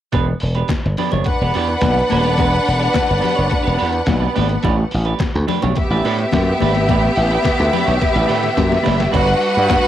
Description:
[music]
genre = disco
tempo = 107 BPM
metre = 4/4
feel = straight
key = unclear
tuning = A4 = 440 Hz
[part]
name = semi-hollow electric guitar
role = accompaniment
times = 0.1-9.9 s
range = G3 to C#5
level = -23 LUFS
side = right 9 dB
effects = cassette tape
[part]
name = slap bass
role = bass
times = 0.1-9.8 s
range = Eb1 to A2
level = -18 LUFS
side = equal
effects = transformer saturation
[part]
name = trip hop sampler-style drum kit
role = drums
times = 0.1-9.9 s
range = crash cymbal, hi-hat, kick drum, snare drum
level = -23 LUFS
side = equal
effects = cassette tape
[part]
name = congas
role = percussion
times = 0.1-9.8 s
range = none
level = -25 LUFS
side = left 10 dB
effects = none
[part]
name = clear symphonic string section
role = second line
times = 1.3-9.9 s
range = B3 to F#5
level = -18 LUFS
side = left 1 dB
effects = cassette tape, tape echo
[part]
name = rich studio string section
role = sustained chords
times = 9.2-9.9 s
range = G3 to B4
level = -18 LUFS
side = right 1 dB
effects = cassette tape
[sound]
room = light reverb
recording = home recording on cassette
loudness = -14 LUFS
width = side -11 dB against mid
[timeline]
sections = 0.1-9.1 A section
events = drum fill 8.0-9.1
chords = 0.1 Em7; 4.6 A9sus4; 9.1 Gmaj7

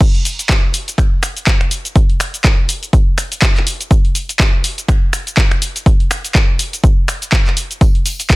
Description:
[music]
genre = house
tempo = 123 BPM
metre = 4/4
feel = swing 57% on 16ths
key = none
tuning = none
[part]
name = electronic kick drum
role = drums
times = 0.0-8.4 s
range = none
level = -12 LUFS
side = equal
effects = none
[part]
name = punchy analog drum machine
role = drums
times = 0.0-8.4 s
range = crash cymbal, finger snaps, handclaps, hi-hat, shaker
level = -18 LUFS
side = equal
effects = sidechain pumping on hats, sidechain pumping on perc, sidechain pumping on cymbals
[part]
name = tambourine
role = percussion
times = 7.8-8.4 s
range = none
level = -29 LUFS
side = left 1 dB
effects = none
[sound]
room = little or no reverb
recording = dense, heavily limited modern master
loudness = -12 LUFS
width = side -23 dB against mid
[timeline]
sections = 0.0-8.4 A section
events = drop 0.0-8.4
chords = none

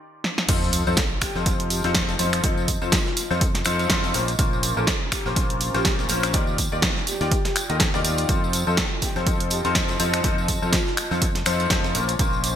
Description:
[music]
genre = piano house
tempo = 123 BPM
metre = 4/4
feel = swing 57% on 16ths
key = F mixolydian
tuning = A4 = 441 Hz
[part]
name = clear baby grand piano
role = riff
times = 0.0-12.5 s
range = Bb2 to Eb5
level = -26 LUFS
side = left 3 dB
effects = analog chorus, sidechain pumping
[part]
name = punchy analog drum machine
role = drums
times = 0.2-12.5 s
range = crash cymbal, finger snaps, hi-hat, snare drum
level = -25 LUFS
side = right 1 dB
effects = gated reverb
[part]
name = fingered electric bass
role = bass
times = 0.5-12.5 s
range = Bb1 to F2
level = -28 LUFS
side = equal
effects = tube saturation, sidechain pumping
[part]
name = breakbeat sampler-style drum kit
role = drums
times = 0.5-12.6 s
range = hi-hat, snare drum, tambourine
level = -32 LUFS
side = equal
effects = none
[part]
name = electronic kick drum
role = drums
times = 0.5-12.3 s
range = none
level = -25 LUFS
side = equal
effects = none
[part]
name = tambourine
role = percussion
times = 0.5-12.6 s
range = none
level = -33 LUFS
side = right 2 dB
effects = none
[part]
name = sub drop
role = sound effects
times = 0.5-2.4 s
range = none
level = -32 LUFS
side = equal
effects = none
[part]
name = warbly tape-like pad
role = texture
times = 1.3-12.6 s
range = Db4 to Bb5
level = -35 LUFS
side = right 1 dB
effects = chorus, built-in reverb, sidechain pumping
[part]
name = breathy flute-like synth lead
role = melody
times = 0.9-11.1 s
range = F4 to A4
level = -34 LUFS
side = left 1 dB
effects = lush chorus, ping-pong delay
[sound]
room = light reverb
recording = bright 1980s-style digital production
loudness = -20 LUFS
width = side -9 dB against mid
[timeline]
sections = 0.5-12.6 A section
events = break 0.0-0.5; drum fill 0.2; drop 0.5-12.6; impact 0.5-2.4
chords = 0.5 F7; 4.1 Bbmadd9; 6.3 Ebmaj9; 8.3 F7; 11.9 Bbmadd9

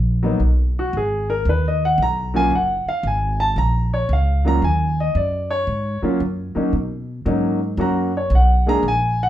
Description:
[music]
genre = jazz piano trio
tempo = 114 BPM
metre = 4/4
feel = swing 67% on 8ths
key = Eb minor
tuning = A4 = 439 Hz
[part]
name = upright bass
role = bass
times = 0.0-9.3 s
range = Gb1 to B2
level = -20 LUFS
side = equal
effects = none
[part]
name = warm grand piano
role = melody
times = 0.2-9.3 s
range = Gb3 to Bb5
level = -20 LUFS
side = equal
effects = plate reverb
[sound]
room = wet studio reverb, RT60 0.6 s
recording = heard from further back in the room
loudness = -17 LUFS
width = side -12 dB against mid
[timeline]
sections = 0.0-9.3 A section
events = grand piano solo 0.0-9.3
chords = 0.0 Abm7; 2.5 Ebm7; 6.7 Bmaj7(no3)

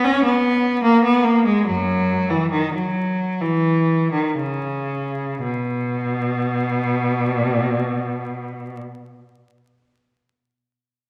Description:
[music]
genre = classical, baroque-style suite movement for unaccompanied cello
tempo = 54-76 BPM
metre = 4/4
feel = rubato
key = B major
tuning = A4 = 440 Hz
[part]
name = rich cello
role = solo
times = 0.0-8.8 s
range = F#2 to C#4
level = -20 LUFS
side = equal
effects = none
[sound]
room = wet scoring stage reverb, RT60 1.7 s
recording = vinyl crackle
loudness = -20 LUFS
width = mono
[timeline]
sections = 0.0-5.4 A section; 5.4-9.5 B section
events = slowing down 0.0-5.4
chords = none

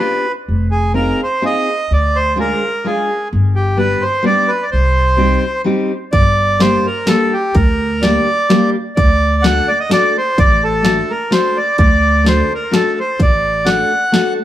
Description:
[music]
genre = musette waltz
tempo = 128 BPM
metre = 3/4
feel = swing 54% on 8ths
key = C minor, G harmonic minor from 6.1 s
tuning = A4 = 439 Hz
[part]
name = accordion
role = melody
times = 0.0-14.3 s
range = G4 to F#5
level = -16 LUFS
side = right 1 dB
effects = analog delay
[part]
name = fingerpicked steel-string acoustic guitar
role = accompaniment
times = 0.0-14.4 s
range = G3 to A4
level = -17 LUFS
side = left 2 dB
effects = none
[part]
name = upright bass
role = bass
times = 0.5-13.8 s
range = F1 to D2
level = -16 LUFS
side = equal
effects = none
[part]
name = house drum kit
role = drums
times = 6.1-14.2 s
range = hi-hat, kick drum, snare drum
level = -15 LUFS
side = equal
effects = none
[sound]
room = moderate studio reverb, RT60 0.5 s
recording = heard from further back in the room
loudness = -12 LUFS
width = side -12 dB against mid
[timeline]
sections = 0.0-6.1 A section; 6.1-14.4 B section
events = none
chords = 0.5 Fm7; 1.9 Ddim; 3.3 G; 4.7 Cm; 6.1 Gm; 9.0 D

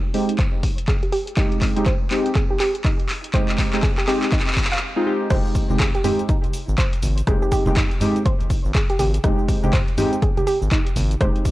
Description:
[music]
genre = deep house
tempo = 122 BPM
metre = 4/4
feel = swing 61% on 16ths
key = F minor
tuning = A4 = 441 Hz
[part]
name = deep mellow chord stab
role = stabs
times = 0.1-11.5 s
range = Ab3 to G4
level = -24 LUFS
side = equal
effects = chorus, sidechain pumping, tape echo
[part]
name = punchy analog drum machine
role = drums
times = 0.1-11.5 s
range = crash cymbal, handclaps, hi-hat, rim click, shaker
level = -28 LUFS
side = equal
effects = none
[part]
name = soft round pluck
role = arpeggios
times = 0.4-11.3 s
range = Eb4 to F5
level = -27 LUFS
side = right 2 dB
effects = chorus, sidechain pumping, tape echo
[part]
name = electronic kick drum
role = drums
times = 0.4-11.5 s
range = none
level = -20 LUFS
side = equal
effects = none
[part]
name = round analog bass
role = bass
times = 5.3-11.3 s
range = F1 to Ab1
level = -22 LUFS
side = equal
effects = transformer saturation, sidechain pumping
[part]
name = congas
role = percussion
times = 5.7-11.1 s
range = none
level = -27 LUFS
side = right 1 dB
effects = none
[sound]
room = digital ambience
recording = dry, gritty hardware recording, transformer saturation, cassette tape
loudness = -18 LUFS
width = side -17 dB against mid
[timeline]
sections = 0.0-5.3 A section; 5.3-11.5 B section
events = build-up 0.0-5.3; drum fill 0.0-4.8; filter sweep on synth arpeggio sound 0.0-5.3; break 4.8-5.3; drop 5.3-11.5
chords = 0.0 Fm9 (rootless)

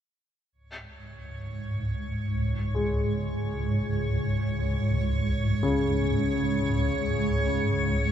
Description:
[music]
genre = dark ambient drone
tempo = free time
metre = none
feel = none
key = unclear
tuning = A4 = 440 Hz
[part]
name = swarming drone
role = drone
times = 1.3-8.1 s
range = C#2 to G#2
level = -27 LUFS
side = right 1 dB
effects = built-in reverb
[part]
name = icy glass pad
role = texture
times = 1.0-8.1 s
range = C#5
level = -34 LUFS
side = right 2 dB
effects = chorus, built-in reverb
[part]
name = dark baby grand piano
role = arpeggios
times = 2.7-8.1 s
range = C#3 to G#3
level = -30 LUFS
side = left 2 dB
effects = diffuse ambient delay
[sound]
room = wet huge ambient reverb, RT60 8.9 s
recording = none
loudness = -24 LUFS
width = side -9 dB against mid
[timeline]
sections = 0.5-8.1 A section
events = none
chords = 0.5 C#5

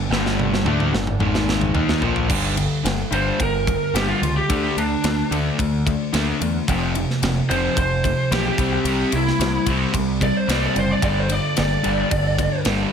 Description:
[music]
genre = hard rock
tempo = 110 BPM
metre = 4/4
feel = straight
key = unclear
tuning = A4 = 440 Hz
[part]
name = phased analog pad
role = sustained chords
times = 0.0-2.3, 11.4-12.9 s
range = G3 to Bb4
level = -36 LUFS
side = right 1 dB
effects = none
[part]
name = overdriven semi-hollow guitar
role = riff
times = 0.0-12.9 s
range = F2 to Eb4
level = -24 LUFS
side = left 10 dB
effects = none
[part]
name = sludgy distorted guitar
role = riff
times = 0.0-12.9 s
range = F2 to Eb4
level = -25 LUFS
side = right 10 dB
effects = overdrive
[part]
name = growling picked electric bass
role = bass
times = 0.0-12.8 s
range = F1 to E2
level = -24 LUFS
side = equal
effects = overdrive
[part]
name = tight metal drum kit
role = drums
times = 0.1-12.8 s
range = crash cymbal, kick drum, ride cymbal, snare drum, toms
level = -25 LUFS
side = equal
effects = none
[part]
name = lead guitar through a small cranked amp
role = melody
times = 3.1-12.6 s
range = D4 to D5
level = -23 LUFS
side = right 1 dB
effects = overdrive, slapback echo
[sound]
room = light reverb, studio ambience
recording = none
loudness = -18 LUFS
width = side -7 dB against mid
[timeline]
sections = 0.0-2.3 A section; 2.3-12.9 B section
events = drum fill 0.1-2.3; lead electric guitar solo 2.3-12.9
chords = 0.0 G5; 1.2 Ab5; 1.8 Gm; 4.5 D5; 6.7 F5; 8.6 C; 11.0 G5

